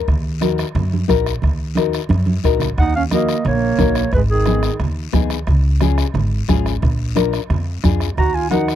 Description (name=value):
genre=latin, cumbia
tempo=178 BPM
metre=4/4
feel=straight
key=Eb minor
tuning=A4 = 440 Hz
part: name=nylon-string guitar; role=accompaniment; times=0.0-8.8 s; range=Cb4 to Bb4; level=-20 LUFS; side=left 17 dB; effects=none
part: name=upright bass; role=bass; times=0.1-8.7 s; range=Ab1 to Gb2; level=-20 LUFS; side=equal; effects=none
part: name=bombo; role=percussion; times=0.1-8.8 s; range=none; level=-22 LUFS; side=right 1 dB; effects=none
part: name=congas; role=percussion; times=0.1-8.7 s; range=none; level=-23 LUFS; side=right 4 dB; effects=none
part: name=guiro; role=percussion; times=0.1-8.8 s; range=none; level=-34 LUFS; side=left 21 dB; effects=none
part: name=breathy clarinet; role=melody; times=2.8-4.8, 8.2-8.8 s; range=Ab4 to Bb5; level=-21 LUFS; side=equal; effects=none
part: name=clear trombone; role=second line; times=2.8-4.8, 8.2-8.8 s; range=Eb3 to Gb4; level=-21 LUFS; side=right 11 dB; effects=none
room=little or no reverb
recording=dry, close 1970s-style studio recording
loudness=-15 LUFS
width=side -11 dB against mid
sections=0.0-2.8 A section; 2.8-8.8 B section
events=drum fill 2.1-2.8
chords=0.1 Ebm; 4.1 Abm; 5.5 Db; 6.8 Bb7; 8.2 Ebm